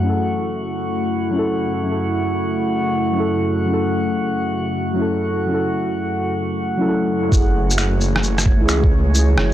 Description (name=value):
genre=future garage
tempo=132 BPM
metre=4/4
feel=swing 67% on 16ths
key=unclear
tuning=A4 = 439 Hz
part: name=muted felt-like synth keys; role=accompaniment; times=0.0-9.5 s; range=F#3 to A4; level=-22 LUFS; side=equal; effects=chorus, sidechain pumping, tape echo
part: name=warbly tape-like pad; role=sustained chords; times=0.0-9.5 s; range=F#2 to F#4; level=-23 LUFS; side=left 1 dB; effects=chorus, built-in reverb, phaser, vintage 12-bit sampler grit, sidechain pumping
part: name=drifting glass-harmonics texture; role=texture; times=0.0-9.5 s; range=C#4 to F#5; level=-25 LUFS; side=right 2 dB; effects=chorus, built-in reverb
part: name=swelling detuned saw bass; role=bass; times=7.3-9.5 s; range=F#1 to C#2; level=-18 LUFS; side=equal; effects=transformer saturation, sidechain pumping
part: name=electronic kick drum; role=drums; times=7.3-8.9 s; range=none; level=-16 LUFS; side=equal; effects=overdrive, studio reverb
part: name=electronic shaker, finger snaps and rim click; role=drums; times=7.3-9.5 s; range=none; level=-21 LUFS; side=equal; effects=overdrive, studio reverb
room=little or no reverb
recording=dry, gritty hardware recording, cassette tape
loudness=-17 LUFS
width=side -12 dB against mid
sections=0.0-7.3 A section; 7.3-9.5 B section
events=none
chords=0.1 A/F#; 7.3 F#m7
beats=| 0.06 0.51 0.97 1.42 | 1.88 2.33 2.78 3.24 | 3.69 4.15 4.60 5.06 | 5.51 5.97 6.42 6.88 | 7.33 7.78 8.24 8.69 | 9.15